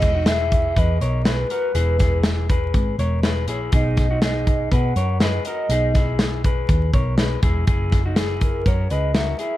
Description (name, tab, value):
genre	jangly indie pop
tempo	122 BPM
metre	4/4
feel	straight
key	unclear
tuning	A4 = 441 Hz
part	hollow clarinet-like synth lead	melody	0.0-9.6 s	G#4 to F#5	-25 LUFS	right 1 dB	chorus
part	electric guitar through a small old amp	arpeggios	0.0-9.6 s	D#4 to C#5	-27 LUFS	left 4 dB	none
part	hollow-body short-scale picked electric bass	bass	0.0-9.3 s	E1 to B2	-22 LUFS	equal	none
part	modern studio drum kit	drums	0.0-9.5 s	hi-hat, kick drum, snare drum	-20 LUFS	equal	none
room	little or no reverb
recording	dark, warm production, vinyl crackle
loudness	-17 LUFS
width	side -15 dB against mid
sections	0.0-9.6 A section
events	none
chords	0.0 Emaj7